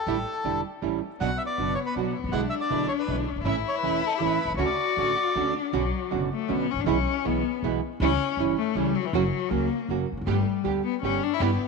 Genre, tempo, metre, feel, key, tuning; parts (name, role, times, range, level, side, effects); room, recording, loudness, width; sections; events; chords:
tango; 159 BPM; 3/4; rubato; D major, B minor from 5.7 s; A4 = 440 Hz
bandoneon; melody; 0.0-5.5 s; G4 to F#5; -30 LUFS; left 1 dB; tape echo
nylon-string guitar; accompaniment; 0.1-11.5 s; B2 to G4; -28 LUFS; right 12 dB
rich studio string section; stabs; 0.1-5.5, 10.3-11.6 s; G#3 to G4; -38 LUFS; right 10 dB
upright bass; bass; 0.1-11.6 s; E1 to D2; -31 LUFS; left 1 dB
warm cello; second line; 1.2-11.7 s; E3 to F#4; -28 LUFS; left 14 dB
moderate plate reverb, RT60 2.3 s; 1960s-style stereo with parts hard left and right; -24 LUFS; side -4 dB against mid
0.0-5.7 A section; 5.7-11.7 B section
cello solo 5.7-11.7
0.1 A7sus4; 0.8 A7; 1.2 Bm; 2.3 E7/B; 3.5 A; 4.6 Dmaj7; 5.7 Bmadd9; 6.9 E/B; 8.0 C#dim; 9.1 F#; 10.3 Gadd9